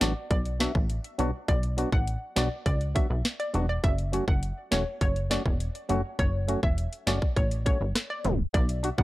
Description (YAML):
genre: dancehall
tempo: 102 BPM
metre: 4/4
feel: straight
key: unclear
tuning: A4 = 445 Hz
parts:
  - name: analog pluck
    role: melody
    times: 0.0-9.0 s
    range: C#5 to F#5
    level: -35 LUFS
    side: equal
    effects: chorus, tape echo
  - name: percussive organ stab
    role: accompaniment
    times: 0.0-9.0 s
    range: D3 to F#4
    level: -30 LUFS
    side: equal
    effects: chorus, sidechain pumping
  - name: plucky analog bass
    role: bass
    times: 0.0-9.0 s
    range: E1 to C#2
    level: -28 LUFS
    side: equal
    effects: none
  - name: island pop drum kit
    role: drums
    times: 0.0-9.0 s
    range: hi-hat, kick drum, rim click, snare drum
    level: -26 LUFS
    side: equal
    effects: none
room: little or no reverb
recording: dry, gritty hardware recording, tape stop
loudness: -25 LUFS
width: side -17 dB against mid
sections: 0.0-8.5 A section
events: tape stop 8.2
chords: 0.0 Bm; 3.8 F#m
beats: 0.31 0.90 | 1.48 2.07 2.66 3.25 | 3.84 4.42 5.01 5.60 | 6.19 6.78 7.37 7.96 | 8.54